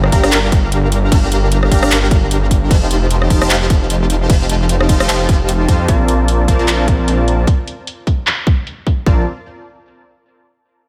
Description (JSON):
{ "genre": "future bass", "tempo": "151 BPM", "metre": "4/4", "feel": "swing 56% on 16ths, half-time", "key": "Bb major", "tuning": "A4 = 436 Hz", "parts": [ { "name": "supersaw stab", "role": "riff", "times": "0.0-9.2 s", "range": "C4 to Bb5", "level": "-20 LUFS", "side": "equal", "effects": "sidechain pumping, tape echo" }, { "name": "detuned saw bass", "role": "bass", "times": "0.0-9.2 s", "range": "F1 to F2", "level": "-18 LUFS", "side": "equal", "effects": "chorus, sidechain pumping" }, { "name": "dubstep drum kit", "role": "drums", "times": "0.0-9.0 s", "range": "crash cymbal, handclaps, hi-hat, rim click", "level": "-22 LUFS", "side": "equal", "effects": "low-pass filter on hats, studio reverb, low-pass filter on cymbals, low-pass filter on snare" }, { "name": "electronic kick drum", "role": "drums", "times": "0.1-9.2 s", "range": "none", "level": "-16 LUFS", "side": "equal", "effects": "studio reverb" } ], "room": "little or no reverb", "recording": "none", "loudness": "-14 LUFS", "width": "mono", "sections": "0.0-5.9 A section; 5.9-9.1 B section; 9.1-10.7 C section", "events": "drop 0.0-5.9", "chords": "0.0 Gm7; 2.7 F9; 5.9 Bbmaj9" }